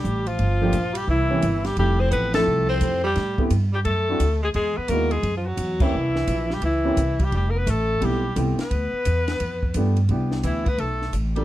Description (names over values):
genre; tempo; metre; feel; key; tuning
jazz, small-group swing and bop; 173 BPM; 4/4; swing 64% on 8ths; C major; A4 = 440 Hz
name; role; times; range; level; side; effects
bright alto saxophone; melody; 0.0-11.4 s; E4 to C5; -25 LUFS; left 2 dB; none
growling tenor saxophone; second line; 0.0-11.4 s; E3 to C4; -29 LUFS; right 2 dB; none
upright bass; bass; 0.0-11.4 s; F1 to A2; -23 LUFS; equal; none
compact cocktail drum kit; drums; 0.0-11.4 s; crash cymbal, hi-hat, kick drum, ride cymbal, snare drum; -28 LUFS; equal; none
warm concert grand piano; accompaniment; 0.6-11.4 s; E3 to A4; -26 LUFS; right 1 dB; none
room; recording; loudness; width
light reverb; dark, warm production; -20 LUFS; side -14 dB against mid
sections
0.0-10.1 A section; 10.1-11.4 B section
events
band accent 2.3, 5.8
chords
0.4 Gm7; 1.1 C7b9; 1.8 Fmaj9; 3.2 Am7; 3.9 D9; 4.5 Emaj9; 5.9 C7b9; 7.3 Fmaj9#11; 8.7 G7; 10.1 Cmaj9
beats
0.04 | 0.39 0.74 1.08 1.43 | 1.78 2.12 2.47 2.82 | 3.16 3.51 3.86 4.20 | 4.55 4.89 5.24 5.59 | 5.93 6.28 6.63 6.97 | 7.32 7.67 8.01 8.36 | 8.71 9.05 9.40 9.75 | 10.09 10.44 10.79 11.14